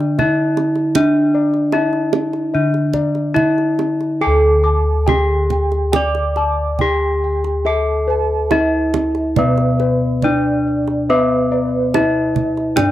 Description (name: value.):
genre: Javanese gamelan.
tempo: 71 BPM.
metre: 4/4.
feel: uneven beats.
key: D pelog barang.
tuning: A4 = 443 Hz.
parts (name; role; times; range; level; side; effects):
gamelan-type bronze metallophone; melody; 0.0-12.9 s; B3+20c to D5; -17 LUFS; left 1 dB; cassette tape.
gamelan-type bossed gongs; arpeggios; 0.0-12.9 s; B4+20c to D6; -23 LUFS; left 6 dB; cassette tape.
gamelan-type bossed gongs; bass; 0.0-12.9 s; D2 to B4+20c; -19 LUFS; equal; none.
kendang; percussion; 0.0-12.9 s; none; -22 LUFS; right 7 dB; none.
gamelan-type bronze metallophone; arpeggios; 4.2-12.9 s; B4+20c to D6; -27 LUFS; right 8 dB; cassette tape.
room: light reverb, small room ambience.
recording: home recording on cassette.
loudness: -14 LUFS.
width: side -13 dB against mid.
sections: 0.0-4.2 A section; 4.2-12.9 B section.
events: none.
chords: none.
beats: 0.18 | 0.95 1.73 2.54 3.36 | 4.21 5.07 5.93 6.80 | 7.66 8.52 9.38 10.24 | 11.10 11.95 12.78.